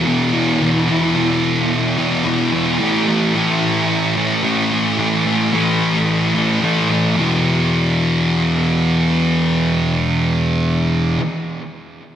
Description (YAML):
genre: rock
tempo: 110 BPM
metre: 4/4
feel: straight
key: unclear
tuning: A4 = 441 Hz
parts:
  - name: thick fuzz guitar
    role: solo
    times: 0.0-11.2 s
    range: E2 to A3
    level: -15 LUFS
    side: equal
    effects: distortion, lush chorus, tape echo
room: wet lush hall reverb, RT60 2.1 s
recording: dreamy mix soaked in reverb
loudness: -14 LUFS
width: side -10 dB against mid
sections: 0.0-7.2 A section; 7.2-11.6 B section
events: none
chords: 0.0 E5; 2.8 A5; 7.2 E5